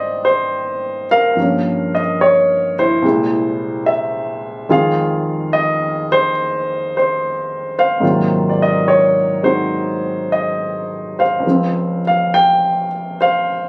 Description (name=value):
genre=solo jazz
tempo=71 BPM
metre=4/4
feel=swing 69% on 8ths, rubato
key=Ab major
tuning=A4 = 441 Hz
part: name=warm grand piano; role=solo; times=0.0-13.7 s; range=C2 to G5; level=-17 LUFS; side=equal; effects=none
room=little or no reverb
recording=recorded on a phone in the room, club reverb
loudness=-17 LUFS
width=mono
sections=0.0-13.7 A section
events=none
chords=0.0 Abmaj9; 1.4 Gm7b5; 3.0 C7b13; 4.7 Fm7; 8.0 Ab13; 11.5 Dbmaj7